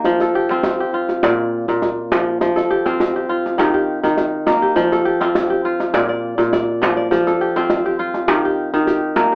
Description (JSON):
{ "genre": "west african traditional, West African string and xylophone music", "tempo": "102 BPM", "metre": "4/4", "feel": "straight", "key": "F mixolydian", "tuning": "A4 = 437 Hz", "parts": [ { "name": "kora", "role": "arpeggios", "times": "0.0-9.3 s", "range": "Bb2 to D5", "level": "-16 LUFS", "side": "equal", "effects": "none" }, { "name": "djembe", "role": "percussion", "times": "0.0-9.3 s", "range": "none", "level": "-20 LUFS", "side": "equal", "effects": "none" } ], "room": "moderate small room reverb, RT60 0.5 s", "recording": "AM radio sound", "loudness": "-15 LUFS", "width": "side -30 dB against mid", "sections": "0.1-9.3 A section", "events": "none", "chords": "0.1 F; 1.2 Bb; 2.4 F; 3.6 Eb; 4.8 F; 5.9 Bb; 7.1 F; 8.3 Eb", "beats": "| 0.05 0.64 1.23 1.82 | 2.40 2.99 3.58 4.17 | 4.76 5.34 5.93 6.52 | 7.11 7.70 8.28 8.87" }